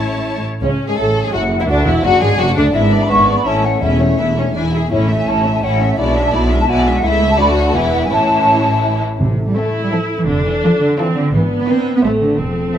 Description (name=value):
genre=quick classical-period movement for symphony orchestra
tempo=168 BPM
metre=3/4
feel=straight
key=A major, A minor from 9.2 s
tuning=A4 = 437 Hz
part: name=rich chamber violin section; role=melody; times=0.0-12.8 s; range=C#4 to A5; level=-27 LUFS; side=left 4 dB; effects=none
part: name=rich chamber violin section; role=second line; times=0.0-12.8 s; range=C4 to C#5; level=-22 LUFS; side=left 3 dB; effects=none
part: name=clear chamber viola section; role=accompaniment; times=0.0-12.8 s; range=E3 to C#5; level=-23 LUFS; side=right 1 dB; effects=none
part: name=warm French horn section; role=sustained chords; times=0.0-12.8 s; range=C#3 to B4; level=-22 LUFS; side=left 3 dB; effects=none
part: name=clear chamber double bass section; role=bass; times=0.0-12.7 s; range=E1 to D2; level=-20 LUFS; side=right 1 dB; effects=none
part: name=warm chamber cello section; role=bass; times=0.0-12.8 s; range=C#2 to C4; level=-19 LUFS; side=right 2 dB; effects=none
part: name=mellow hollow flute section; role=second line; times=0.6-9.0 s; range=C#5 to C#6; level=-18 LUFS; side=left 1 dB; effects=none
part: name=dark bassoon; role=accompaniment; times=1.0-9.0 s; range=B3 to F#4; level=-21 LUFS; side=right 2 dB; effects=none
part: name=timpani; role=percussion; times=3.8-5.4, 9.2-9.7 s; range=E2 to A2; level=-23 LUFS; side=equal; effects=none
room=moderate recital hall reverb, RT60 1.4 s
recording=none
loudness=-12 LUFS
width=side -9 dB against mid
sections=0.6-9.2 A section; 9.2-12.8 A section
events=none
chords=0.0 A; 1.7 D; 2.7 E7/G#; 3.5 A; 3.8 A/E; 4.6 E; 4.9 A; 6.0 E7/B; 7.0 A/C#; 7.4 D; 7.7 E; 8.1 A; 9.2 Am; 10.3 Dm/F; 11.3 E7/G#; 12.0 Am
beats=0.25 | 0.62 0.98 1.34 | 1.69 2.04 2.39 | 2.75 3.10 3.45 | 3.82 4.19 4.55 | 4.92 5.28 5.63 | 5.99 6.34 6.69 | 7.04 7.39 7.75 | 8.11 8.47 8.84 | 9.21 9.57 9.93 | 10.28 10.64 10.99 | 11.33 11.68 12.04 | 12.40 12.76